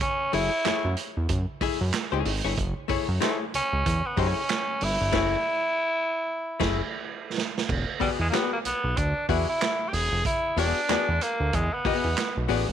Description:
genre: funk.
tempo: 94 BPM.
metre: 4/4.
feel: swing 60% on 16ths.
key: E mixolydian.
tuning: A4 = 439 Hz.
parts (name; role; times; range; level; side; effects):
raspy tenor saxophone; melody; 0.0-12.4 s; G3 to G#4; -27 LUFS; equal; none.
vintage drum kit; drums; 0.0-12.7 s; crash cymbal, handclaps, hi-hat, kick drum, snare drum; -30 LUFS; right 4 dB; none.
archtop guitar, miked and amplified; accompaniment; 0.3-12.7 s; A3 to E5; -30 LUFS; left 11 dB; none.
fat analog bass; bass; 0.3-12.7 s; E1 to F#2; -27 LUFS; equal; none.
room: light reverb, studio ambience.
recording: 1960s-style stereo.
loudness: -24 LUFS.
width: side -9 dB against mid.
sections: 0.0-7.7 A section; 7.7-12.7 B section.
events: band accent 5.1-7.7; drum fill 6.4-7.7; tenor saxophone solo 7.7-12.7.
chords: 0.0 F#m9; 7.7 E9.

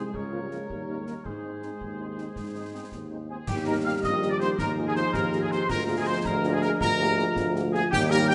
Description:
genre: military-style march for wind band.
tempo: 108 BPM (dotted quarters).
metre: 6/8.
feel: straight.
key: Ab major.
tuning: A4 = 439 Hz.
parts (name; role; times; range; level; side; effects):
bright trumpet section; melody; 0.0-8.3 s; G4 to G5; -34 LUFS; equal; none.
clear woodwind section; second line; 0.0-8.3 s; G4 to G5; -37 LUFS; equal; none.
dark euphonium; second line; 0.0-8.3 s; F3 to G4; -36 LUFS; equal; none.
warm French horn section; accompaniment; 0.0-8.3 s; F3 to Ab4; -37 LUFS; equal; none.
warm tuba; bass; 0.0-8.3 s; Bb1 to Ab2; -33 LUFS; equal; none.
concert bass drum, concert snare drum and clash cymbals; drums; 0.1-8.3 s; none; -39 LUFS; equal; none.
wooden piccolo; second line; 3.3-8.3 s; G5 to G6; -34 LUFS; equal; none.
dark trombone section; sustained chords; 3.5-8.3 s; Eb3 to Ab3; -35 LUFS; equal; none.
room: wet scoring stage reverb, RT60 1.7 s.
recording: nothing above 10.9 kHz.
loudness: -27 LUFS.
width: mono.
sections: 0.0-3.5 A section; 3.5-8.3 B section.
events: none.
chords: 0.1 Bbm/Db; 0.7 Eb7; 1.3 Ab; 3.5 Eb; 4.6 Fm7/Eb; 5.7 Bb7/D.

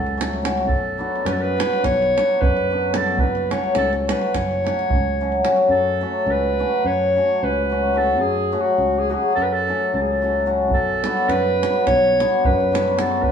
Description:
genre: balkan folk, Balkan wedding band.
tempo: 215 BPM (eighths).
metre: 9/8.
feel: straight.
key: F# minor.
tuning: A4 = 440 Hz.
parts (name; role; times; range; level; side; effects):
warm clarinet; melody; 0.0-13.3 s; F#4 to C#5; -22 LUFS; right 1 dB; none.
cimbalom; accompaniment; 0.0-13.3 s; F#3 to F#4; -21 LUFS; left 2 dB; none.
sustaining fretless electric bass; bass; 0.0-13.3 s; F#1 to F#2; -27 LUFS; right 1 dB; none.
davul; percussion; 0.1-5.6, 10.7-13.3 s; none; -25 LUFS; right 2 dB; none.
room: wet stone room reverb, RT60 1.3 s.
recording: band playing live in one room, small room ambience.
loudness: -17 LUFS.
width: side -7 dB against mid.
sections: 0.0-5.7 A section; 5.7-13.3 A section.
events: none.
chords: 0.0 F#m; 0.7 Bm; 3.2 F#m; 10.7 Bm.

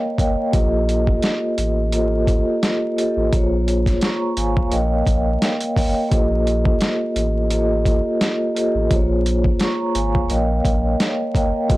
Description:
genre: hip hop, boom-bap hip-hop.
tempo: 86 BPM.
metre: 4/4.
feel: swing 56% on 16ths.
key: unclear.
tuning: A4 = 439 Hz.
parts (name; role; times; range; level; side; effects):
vibraphone with soft mallets; accompaniment; 0.0-11.8 s; Bb3 to Db6; -20 LUFS; equal; cassette tape, high-pass filter, low-pass filter, plate reverb.
warm sub bass; bass; 0.2-11.8 s; G1 to Bb1; -21 LUFS; equal; transformer saturation.
boom bap sampler-style drum kit; drums; 0.2-11.8 s; hi-hat, kick drum, snare drum; -20 LUFS; equal; overdrive.
room: moderate small room reverb, RT60 0.5 s.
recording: blown-out, overdriven recording, vinyl crackle, overdrive.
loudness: -17 LUFS.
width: side -18 dB against mid.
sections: 0.0-11.8 A section.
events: none.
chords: 0.0 Eb9/Bb; 0.5 F9; 3.3 Bbm9; 4.7 Eb9/Bb; 6.1 F9; 8.9 Bbm9; 10.3 Eb9/Bb.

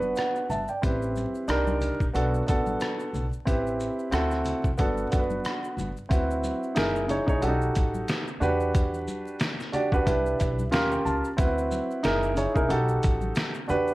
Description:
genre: hip hop, jazz-hop.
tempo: 91 BPM.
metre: 4/4.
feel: swing 58% on 16ths.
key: unclear.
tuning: A4 = 442 Hz.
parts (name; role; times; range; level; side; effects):
dark grand piano; accompaniment; 0.0-13.9 s; B3 to A5; -26 LUFS; right 1 dB; plate reverb.
upright bass; bass; 0.0-13.9 s; E1 to E2; -31 LUFS; equal; none.
congas and maracas; percussion; 0.0-13.9 s; none; -39 LUFS; left 2 dB; none.
trip hop sampler-style drum kit; drums; 0.2-13.9 s; hi-hat, kick drum, rim click, shaker, snare drum; -28 LUFS; equal; none.
room: light reverb.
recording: dark, warm production, vinyl crackle.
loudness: -24 LUFS.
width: side -18 dB against mid.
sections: 0.0-6.1 A section; 6.1-13.9 B section.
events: grand piano fill 10.1-11.4.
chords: 0.0 Gmaj7; 0.8 Am9; 1.5 Cm7; 2.2 Bm7; 3.5 Am9; 4.1 D9; 4.8 Gmaj7; 6.1 D13; 6.8 F#13; 7.4 B7b13; 8.4 Em9; 10.1 Cmaj9; 10.7 D#9; 11.4 D13; 12.0 F#13; 12.7 B7b13.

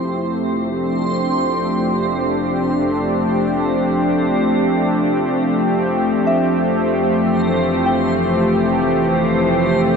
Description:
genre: ambient.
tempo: free time.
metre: none.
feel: none.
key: unclear.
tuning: A4 = 441 Hz.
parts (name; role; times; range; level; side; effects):
warm analog pad; sustained chords; 0.0-10.0 s; E3 to G4; -16 LUFS; equal; chorus.
bright studio double bass section; bass; 0.0-10.0 s; F1; -33 LUFS; equal; none.
backwards swelling texture; texture; 0.0-10.0 s; C5; -25 LUFS; right 2 dB; built-in reverb.
soft synth bell; arpeggios; 6.3-10.0 s; E5 to G5; -25 LUFS; equal; chorus, tape echo.
room: wet huge ambient reverb, RT60 8.4 s.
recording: dreamy mix soaked in reverb, nothing above 8.0 kHz.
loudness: -15 LUFS.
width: side -6 dB against mid.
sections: 0.0-10.0 A section.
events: fade-in on double bass section 0.0-10.0.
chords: 0.0 G9sus4/F.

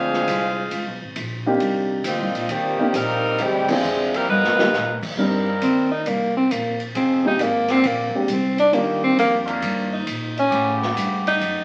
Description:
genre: jazz, big band swing.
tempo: 135 BPM.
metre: 4/4.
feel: swing 68% on 8ths.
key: C minor.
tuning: A4 = 438 Hz.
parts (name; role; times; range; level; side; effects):
warm saxophone section; melody; 0.0-5.0 s; Eb3 to F5; -24 LUFS; equal; none.
warm trombone section; second line; 0.0-5.0 s; G2 to F4; -31 LUFS; equal; none.
dark baby grand piano; accompaniment; 0.0-9.4 s; F3 to A#4; -26 LUFS; equal; none.
upright bass; bass; 0.0-11.6 s; F1 to A#2; -31 LUFS; equal; none.
swinging big-band drum kit; drums; 0.1-11.5 s; crash cymbal, hi-hat, kick drum, ride cymbal, snare drum; -32 LUFS; equal; none.
clear trombone section; sustained chords; 5.2-11.6 s; C#3 to Bb4; -30 LUFS; equal; none.
warm tenor saxophone; melody; 5.6-11.6 s; Bb3 to Eb4; -22 LUFS; equal; none.
room: wet club reverb, RT60 0.7 s.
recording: very old 78 rpm record, vinyl crackle.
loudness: -21 LUFS.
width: mono.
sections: 0.0-5.2 A section; 5.2-11.6 B section.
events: band accent 3.6; drum fill 4.3-4.7; tenor saxophone solo 5.2-11.6.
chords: 0.0 Dm7b5; 0.7 Db13; 1.6 Cm7; 3.4 Dm7b5; 4.3 G7alt; 5.2 Cm7; 7.0 Fm7; 7.8 Bb9; 8.7 Ebmaj7; 10.5 A9.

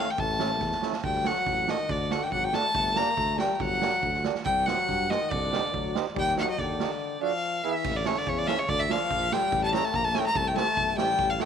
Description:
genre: klezmer.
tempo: 142 BPM.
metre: 2/4.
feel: straight.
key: D phrygian dominant, A phrygian dominant from 7.8 s.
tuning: A4 = 437 Hz.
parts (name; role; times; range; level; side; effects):
warm violin; melody; 0.0-11.5 s; C#5 to Bb5; -27 LUFS; left 1 dB; tape echo.
clear trombone; second line; 0.0-11.5 s; C#3 to Bb3; -33 LUFS; left 12 dB; none.
mellow accordion; accompaniment; 0.0-11.5 s; B3 to C5; -34 LUFS; right 12 dB; none.
mellow tuba; bass; 0.2-11.4 s; G1 to G2; -34 LUFS; equal; none.
street-band drum kit; drums; 0.2-11.5 s; crash cymbal, kick drum, snare drum; -33 LUFS; right 6 dB; none.
room: moderate spring reverb, RT60 1.8 s.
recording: 1960s-style stereo with parts hard left and right.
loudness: -24 LUFS.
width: side -7 dB against mid.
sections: 0.0-1.0 A section; 1.0-7.8 B section; 7.8-11.5 C section.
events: speeding up 0.0-11.5; drum fill 0.6-1.0.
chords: 0.0 A; 1.0 D; 2.8 Gm; 4.5 Cm; 6.2 Eb; 7.0 D; 7.4 E; 7.8 A; 8.7 Dm; 9.5 A; 10.4 C.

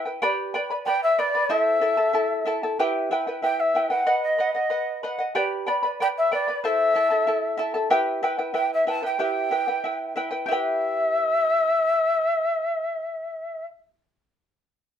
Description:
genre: andean folk, Andean ensemble.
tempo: 94 BPM.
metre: 2/4.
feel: straight.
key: E minor.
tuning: A4 = 438 Hz.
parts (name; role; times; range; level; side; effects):
breathy mellow large quena; melody; 0.0-13.7 s; D5 to A5; -22 LUFS; left 1 dB; none.
charango; accompaniment; 0.0-14.0 s; E4 to B5; -24 LUFS; equal; none.
room: moderate studio reverb, RT60 0.6 s.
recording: minimal, uncompressed stereo recording.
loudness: -21 LUFS.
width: side -9 dB against mid.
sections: 0.2-10.5 A section; 10.5-13.0 B section.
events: none.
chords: 0.2 G; 1.5 Am; 2.8 Em; 4.1 B; 5.4 G; 6.6 Am; 7.9 Em.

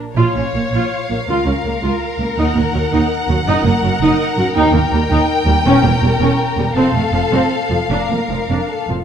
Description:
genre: quick classical-period movement for string orchestra.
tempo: 163 BPM.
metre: 3/4.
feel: rubato.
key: Bb minor, Bb major from 4.5 s.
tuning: A4 = 440 Hz.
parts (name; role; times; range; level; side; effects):
warm symphonic violin section; melody; 0.2-8.8 s; F5 to G5; -22 LUFS; left 4 dB; none.
warm symphonic violin section; second line; 0.2-8.9 s; A4 to Db5; -22 LUFS; left 4 dB; none.
warm symphonic viola section; accompaniment; 0.2-9.0 s; F3 to F4; -18 LUFS; right 1 dB; none.
warm symphonic cello section; bass; 0.2-9.0 s; Db2 to Bb2; -22 LUFS; right 3 dB; none.
warm symphonic double bass section; bass; 0.2-9.0 s; E1 to Eb2; -19 LUFS; right 3 dB; none.
room: moderate concert hall reverb, RT60 1.9 s.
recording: dark, warm production.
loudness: -13 LUFS.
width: side -8 dB against mid.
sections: 0.2-9.0 A section.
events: none.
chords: 0.2 Bbm; 1.3 Bbm/Db; 2.4 Ebm; 3.5 Ebm/Gb; 4.5 Eb; 5.6 Edim7; 6.8 F; 7.9 Bb/F.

